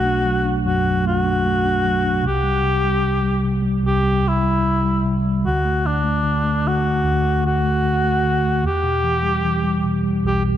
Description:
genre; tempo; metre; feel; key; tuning
pop; 75 BPM; 4/4; straight; E minor; A4 = 440 Hz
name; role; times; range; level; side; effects
mellow cor anglais; melody; 0.0-10.4 s; D4 to G4; -20 LUFS; equal; none
mellow tine electric piano; accompaniment; 0.0-10.6 s; B1 to D4; -19 LUFS; equal; medium stereo tremolo
room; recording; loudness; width
light reverb, studio reverb; dark, warm production; -17 LUFS; side -11 dB against mid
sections
0.0-10.6 A section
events
none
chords
0.0 Bm7; 2.2 C; 5.4 D; 8.6 Em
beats
0.65 1.45 | 2.25 3.04 3.85 4.64 | 5.45 6.25 7.04 7.84 | 8.64 9.45 10.24

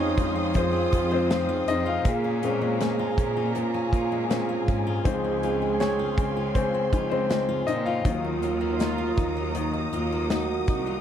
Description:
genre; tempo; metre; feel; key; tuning
pop ballad; 80 BPM; 4/4; straight; Db major; A4 = 440 Hz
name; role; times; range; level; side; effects
mellow French horn section; second line; 0.0-11.0 s; Eb4 to Ab4; -30 LUFS; right 7 dB; none
warm concert grand piano; accompaniment; 0.0-11.0 s; F3 to F5; -29 LUFS; left 4 dB; none
dark symphonic string section; sustained chords; 0.0-11.0 s; Gb3 to Eb6; -33 LUFS; left 1 dB; none
fingerpicked steel-string acoustic guitar; arpeggios; 0.0-11.0 s; F2 to F4; -33 LUFS; left 8 dB; none
bright studio cello section; bass; 0.0-11.0 s; C2 to Bb2; -30 LUFS; right 1 dB; none
modern studio drum kit; drums; 0.2-10.9 s; hi-hat, kick drum, snare drum; -27 LUFS; equal; none
room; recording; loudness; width
small room ambience; none; -23 LUFS; side -9 dB against mid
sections
0.0-11.0 A section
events
grand piano solo 0.0-11.0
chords
0.0 Fm7; 2.1 Bbm7; 5.1 Dbmaj7; 8.1 Ebmadd9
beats
0.55 1.30 | 2.05 2.80 3.55 4.30 | 5.05 5.80 6.55 7.30 | 8.05 8.80 9.55 10.30

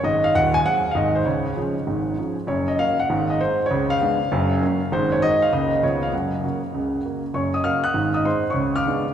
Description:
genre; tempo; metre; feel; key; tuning
jazz, stride piano; 198 BPM; 4/4; swing 64% on 8ths; F# major; A4 = 440 Hz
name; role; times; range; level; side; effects
warm concert grand piano; solo; 0.0-9.1 s; D#1 to F#6; -19 LUFS; equal; none
room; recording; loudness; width
wet church reverb, RT60 3.0 s; recorded in a church or concert hall; -19 LUFS; side -9 dB against mid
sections
0.0-7.3 A section; 7.3-9.1 A section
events
none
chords
0.0 G#7; 1.3 C#; 2.5 F#; 3.1 G#; 3.7 C#7b9; 4.3 F#; 4.9 G#5; 5.5 F#/C#; 5.8 C#7; 6.1 F#; 8.0 G#7; 8.6 C#7b9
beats
| 0.04 0.35 0.65 0.96 | 1.26 1.57 1.87 2.18 | 2.48 2.79 3.09 3.40 | 3.70 4.00 4.31 4.61 | 4.92 5.22 5.52 5.83 | 6.13 6.43 6.74 7.04 | 7.34 7.65 7.95 8.26 | 8.56 8.86

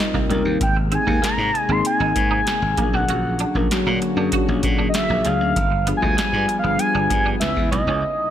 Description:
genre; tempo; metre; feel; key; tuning
polished 1980s jazz-funk pop; 97 BPM; 4/4; straight; unclear; A4 = 441 Hz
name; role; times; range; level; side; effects
expressive synth lead; melody; 0.0-8.3 s; Eb5 to C6; -22 LUFS; equal; chorus, ping-pong delay
mellow tine electric piano; accompaniment; 0.0-8.1 s; F#3 to Cb5; -24 LUFS; left 2 dB; analog chorus
warm analog pad; sustained chords; 0.0-8.3 s; C3 to Ab4; -31 LUFS; left 2 dB; chorus
electric guitar at the edge of break-up; riff; 0.0-8.0 s; G3 to F#4; -29 LUFS; right 6 dB; ensemble chorus
slap bass; bass; 0.1-8.0 s; G1 to Bb2; -24 LUFS; equal; none
booming analog drum machine; drums; 0.1-7.9 s; hi-hat, kick drum, snare drum; -24 LUFS; equal; overdrive, gated reverb
room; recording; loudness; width
light reverb; none; -17 LUFS; side -10 dB against mid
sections
0.0-8.3 A section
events
band accent 8.0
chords
0.0 Cm7; 0.6 Abadd9; 2.8 Bb7alt; 5.6 G7b9; 7.4 Dbm7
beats
| 0.61 1.23 1.85 2.47 | 3.09 3.71 4.33 4.95 | 5.56 6.18 6.80 7.42 | 8.04

